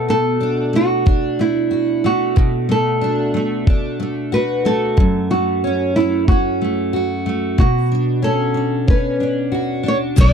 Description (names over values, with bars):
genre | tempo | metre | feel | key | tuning
acoustic pop | 92 BPM | 4/4 | straight | B minor | A4 = 440 Hz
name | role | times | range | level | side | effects
nylon-string guitar | melody | 0.0-10.3 s | E4 to D5 | -19 LUFS | right 1 dB | none
picked steel-string acoustic guitar | accompaniment | 0.0-10.3 s | F#2 to F#4 | -19 LUFS | equal | double-tracked left and right
dusty soul sampler-style drum kit | drums | 1.1-10.3 s | crash cymbal, kick drum | -14 LUFS | equal | none
vintage muted fingered electric bass | bass | 10.2-10.3 s | B1 | -12 LUFS | equal | none
egg shaker | percussion | 10.2-10.3 s | none | -32 LUFS | right 15 dB | none
room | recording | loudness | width
little or no reverb | dry, close 1970s-style studio recording | -15 LUFS | side -7 dB against mid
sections
0.0-10.2 A section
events
none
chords
0.0 Bm7; 5.0 F#m; 7.6 Bmadd9